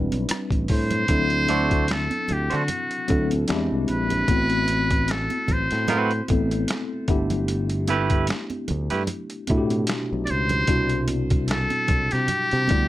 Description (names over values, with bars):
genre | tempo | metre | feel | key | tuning
R&B, neo-soul | 75 BPM | 4/4 | swing 55% on 16ths | unclear | A4 = 436 Hz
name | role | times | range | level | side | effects
mellow tine electric piano | accompaniment | 0.0-12.9 s | B2 to B4 | -27 LUFS | left 2 dB | medium stereo tremolo
fingered electric bass | bass | 0.0-12.9 s | G1 to D3 | -25 LUFS | equal | none
boom bap sampler-style drum kit | drums | 0.1-12.9 s | finger snaps, hi-hat, kick drum, rim click, snare drum | -26 LUFS | equal | none
congas | percussion | 0.1-12.9 s | none | -33 LUFS | right 5 dB | none
trumpet with metal mute | melody | 0.7-12.9 s | F#4 to D5 | -25 LUFS | equal | none
clean electric guitar | second line | 1.5-9.0 s | A3 to C5 | -24 LUFS | right 6 dB | none
room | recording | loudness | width
light reverb | none | -20 LUFS | side -15 dB against mid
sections
0.0-1.1 A section; 1.1-12.9 B section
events
tine electric piano fill 12.7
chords
0.0 Am11; 1.1 D7; 3.5 E7alt; 4.3 Am69; 7.1 G69; 10.7 Cmaj9#11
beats
0.28 | 1.08 1.88 2.68 3.48 | 4.28 5.08 5.88 6.68 | 7.48 8.28 9.08 9.88 | 10.68 11.48 12.28